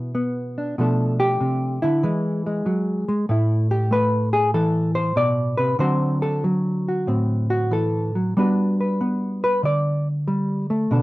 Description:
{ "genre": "solo jazz", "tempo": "95 BPM", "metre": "4/4", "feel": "swing 67% on 8ths, rubato", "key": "unclear", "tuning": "A4 = 440 Hz", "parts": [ { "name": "hollow-body jazz guitar", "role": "solo", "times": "0.0-11.0 s", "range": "A2 to D5", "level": "-19 LUFS", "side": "equal", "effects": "none" } ], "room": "moderate small room reverb, RT60 0.5 s", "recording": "dry, close 1970s-style studio recording", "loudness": "-19 LUFS", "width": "side -18 dB against mid", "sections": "0.0-11.0 A section", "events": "hollow-body jazz guitar solo 0.0-11.0", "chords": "0.0 E7(no3); 0.8 Bm7b5; 2.0 E; 3.3 Amadd9; 5.8 D7; 8.4 Gmaj7", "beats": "0.14 | 0.78 1.41 2.04 2.66 | 3.29 3.92 4.54 5.17 | 5.80 6.44 7.07 7.72 | 8.36 9.00 9.63 10.27 | 10.90" }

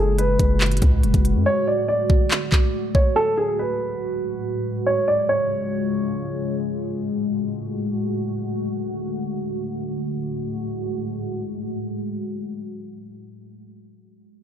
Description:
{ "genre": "hip hop, trap", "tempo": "141 BPM", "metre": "4/4", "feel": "half-time", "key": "F# harmonic minor", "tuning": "A4 = 440 Hz", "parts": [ { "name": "dark concert grand piano", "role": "melody", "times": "0.0-6.5 s", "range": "G#4 to D5", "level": "-23 LUFS", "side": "right 1 dB", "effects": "low-pass filter" }, { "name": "deep dark ambient pad", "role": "sustained chords", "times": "0.0-13.1 s", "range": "A2 to F#4", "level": "-25 LUFS", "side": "left 1 dB", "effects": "chorus, built-in reverb, low-pass filter" }, { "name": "hard-hitting 808-style bass", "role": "bass", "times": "0.0-1.5 s", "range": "E#1 to F#2", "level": "-20 LUFS", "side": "equal", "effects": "none" }, { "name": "trap drum kit", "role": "drums", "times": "0.2-3.0 s", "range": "handclaps, hi-hat, kick drum", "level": "-18 LUFS", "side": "equal", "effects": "none" } ], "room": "light reverb", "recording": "dark, warm production", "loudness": "-20 LUFS", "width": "side -9 dB against mid", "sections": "0.0-10.0 A section; 10.0-13.4 B section", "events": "filter sweep 0.0-10.0; hi-hats muted 1.5-3.2", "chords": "0.0 F#madd9; 1.5 D; 3.2 F#madd9; 4.9 C#; 6.6 F#madd9; 8.3 D; 10.0 F#madd9", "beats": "0.18 0.61 1.03 | 1.46 1.89 2.31 2.74 | 3.16 3.59 4.01 4.44 | 4.86 5.29 5.71 6.14 | 6.57 6.99 7.42 7.84 | 8.27 8.69 9.12 9.54 | 9.97 10.39 10.82 11.25 | 11.67 12.10 12.52 12.95" }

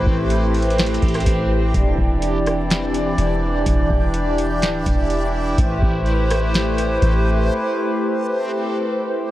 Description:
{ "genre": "hip hop, atmospheric cloud-rap", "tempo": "125 BPM", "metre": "4/4", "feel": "half-time", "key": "unclear", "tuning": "A4 = 440 Hz", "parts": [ { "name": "hollow soft pad", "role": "sustained chords", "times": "0.0-9.3 s", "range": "E3 to D5", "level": "-20 LUFS", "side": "equal", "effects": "chorus, sidechain pumping" }, { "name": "soft 808-style bass", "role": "bass", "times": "0.0-7.5 s", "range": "D1 to A1", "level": "-20 LUFS", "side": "equal", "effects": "none" }, { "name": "backwards swelling texture", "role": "texture", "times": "0.0-9.3 s", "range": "C4 to G5", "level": "-28 LUFS", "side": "equal", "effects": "built-in reverb" }, { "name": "booming analog drum machine", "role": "drums", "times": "0.1-7.1 s", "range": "hi-hat, kick drum, rim click, snare drum", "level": "-20 LUFS", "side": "equal", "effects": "none" } ], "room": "digital ambience", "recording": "worn, warbling old tape, cassette tape, warbly pitch drift", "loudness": "-17 LUFS", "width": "side -14 dB against mid", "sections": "0.0-9.3 A section", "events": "break 7.5-9.3", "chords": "0.0 Am7; 1.7 Em7; 5.6 Am7", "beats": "0.30 0.78 1.26 | 1.74 2.22 2.70 3.18 | 3.66 4.14 4.62 5.10 | 5.58 6.06 6.54 7.02 | 7.50 7.98 8.46 8.94" }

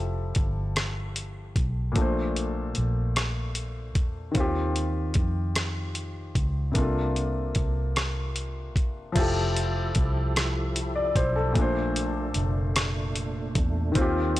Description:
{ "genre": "slow six-eight R&B", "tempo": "50 BPM (dotted quarters)", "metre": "6/8", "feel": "straight", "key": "F major", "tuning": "A4 = 443 Hz", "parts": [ { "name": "warm grand piano", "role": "accompaniment", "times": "0.0-14.4 s", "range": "Bb2 to D5", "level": "-30 LUFS", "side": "left 3 dB", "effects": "none" }, { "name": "vintage muted fingered electric bass", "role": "bass", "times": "0.0-14.4 s", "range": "F1 to F2", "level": "-29 LUFS", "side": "equal", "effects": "transformer saturation" }, { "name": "dusty soul sampler-style drum kit", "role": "drums", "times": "0.3-14.4 s", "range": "crash cymbal, hi-hat, kick drum, rim click", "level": "-27 LUFS", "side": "equal", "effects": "none" }, { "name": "percussive tonewheel organ", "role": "sustained chords", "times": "9.2-14.4 s", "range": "Bb2 to A4", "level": "-33 LUFS", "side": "right 2 dB", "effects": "overdrive, chorus vibrato, slow rotary speaker" } ], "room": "light reverb", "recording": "blown-out, overdriven recording, overdrive", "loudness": "-24 LUFS", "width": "side -16 dB against mid", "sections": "0.0-9.2 A section; 9.2-14.4 B section", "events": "none", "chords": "0.0 Fmaj9; 2.0 Bbmaj9; 4.4 Eb69; 6.8 C13sus4; 9.2 Fmaj9; 11.6 Bbmaj9", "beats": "0.75 | 1.95 3.15 | 4.35 5.55 | 6.75 7.95 | 9.15 10.35 | 11.55 12.75 | 13.95" }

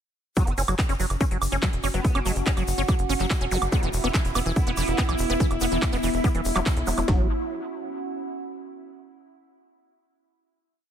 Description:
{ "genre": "psychedelic trance", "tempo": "143 BPM", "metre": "4/4", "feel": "straight", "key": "unclear", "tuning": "A4 = 439 Hz", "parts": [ { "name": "vowel-sweep wobble bass", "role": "second line", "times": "0.4-5.2 s", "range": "B3 to C#4", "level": "-37 LUFS", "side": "right 1 dB", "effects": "analog chorus, sidechain pumping, high-pass filter, ping-pong delay" }, { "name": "liquid acid bass", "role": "riff", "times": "0.4-7.3 s", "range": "E3 to C#4", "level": "-30 LUFS", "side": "right 1 dB", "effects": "chorus, auto-pan, sidechain pumping, dub echo" }, { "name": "techno drum kit", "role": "drums", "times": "0.4-7.2 s", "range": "kick drum, snare drum", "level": "-24 LUFS", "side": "equal", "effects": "none" }, { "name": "techno drum kit", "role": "drums", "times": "0.4-7.1 s", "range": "handclaps, hi-hat, woodblock", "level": "-31 LUFS", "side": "right 2 dB", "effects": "none" }, { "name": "egg shaker", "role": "percussion", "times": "0.4-7.1 s", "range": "none", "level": "-38 LUFS", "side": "left 6 dB", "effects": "none" }, { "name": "warbly tape-like pad", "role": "texture", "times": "1.2-8.7 s", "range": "B3 to F#5", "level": "-31 LUFS", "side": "left 1 dB", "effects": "chorus, built-in reverb, sidechain pumping" }, { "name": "tight sequencer bass", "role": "bass", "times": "0.5-7.3 s", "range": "E1 to B1", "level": "-27 LUFS", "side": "equal", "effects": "none" }, { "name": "zap", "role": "sound effects", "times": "3.5-3.6 s", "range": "none", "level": "-36 LUFS", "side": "left 1 dB", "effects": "none" }, { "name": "bubbling stepped-filter texture", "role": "sustained chords", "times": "3.9-7.1 s", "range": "E4", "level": "-32 LUFS", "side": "right 5 dB", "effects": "chorus, built-in reverb, sidechain pumping" } ], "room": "digital ambience", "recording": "none", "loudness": "-22 LUFS", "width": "side -9 dB against mid", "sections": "0.4-7.1 drop; 7.1-8.8 final chord", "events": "drop 0.4-7.1", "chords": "0.4 F#5; 3.7 E5; 7.1 F#5", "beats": "| 0.37 0.79 1.21 1.63 | 2.04 2.46 2.88 3.30 | 3.72 4.14 4.56 4.98 | 5.40 5.82 6.24 6.66 | 7.08 7.50 7.92 8.34" }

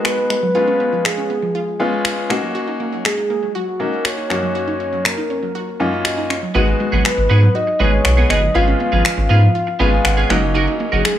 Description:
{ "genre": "dance-pop", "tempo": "120 BPM", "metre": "4/4", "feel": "straight", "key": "G# dorian", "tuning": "A4 = 440 Hz", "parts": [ { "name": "soft octave-layered synth lead", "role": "melody", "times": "0.0-11.2 s", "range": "F#4 to E#5", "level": "-20 LUFS", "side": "equal", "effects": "chorus, digital delay" }, { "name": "clear grand piano", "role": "accompaniment", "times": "0.0-11.1 s", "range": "F#2 to B5", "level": "-21 LUFS", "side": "left 2 dB", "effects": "none" }, { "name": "electronic finger snaps", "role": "drums", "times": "0.0-11.2 s", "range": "none", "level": "-20 LUFS", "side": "left 1 dB", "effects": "none" }, { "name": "wide unison pluck", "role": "arpeggios", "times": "0.1-11.0 s", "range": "E#3 to F#4", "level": "-26 LUFS", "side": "right 2 dB", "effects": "digital delay" }, { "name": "twelve-string electric guitar", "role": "riff", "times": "6.5-11.1 s", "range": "B3 to A#4", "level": "-22 LUFS", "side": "right 5 dB", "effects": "analog chorus" }, { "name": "round analog bass", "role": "bass", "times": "6.5-11.0 s", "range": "F#1 to G#2", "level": "-15 LUFS", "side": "equal", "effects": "none" }, { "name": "swell", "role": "sound effects", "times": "10.9-11.2 s", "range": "none", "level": "-25 LUFS", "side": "left 3 dB", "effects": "none" } ], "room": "digital ambience", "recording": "studio ambience", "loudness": "-15 LUFS", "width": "side -11 dB against mid", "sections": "0.0-11.2 A section", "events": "grand piano fill 5.8-6.5, 9.6-10.6; swell 10.9-11.2", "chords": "0.0 G#m7; 0.6 C#7; 2.3 F#6; 4.3 D#m7/F#; 6.5 G#m7; 8.6 C#7/G#; 10.3 F#6", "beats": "0.05 | 0.55 1.05 1.55 2.05 | 2.55 3.05 3.55 4.05 | 4.55 5.05 5.55 6.05 | 6.55 7.05 7.55 8.05 | 8.55 9.05 9.55 10.05 | 10.55 11.05" }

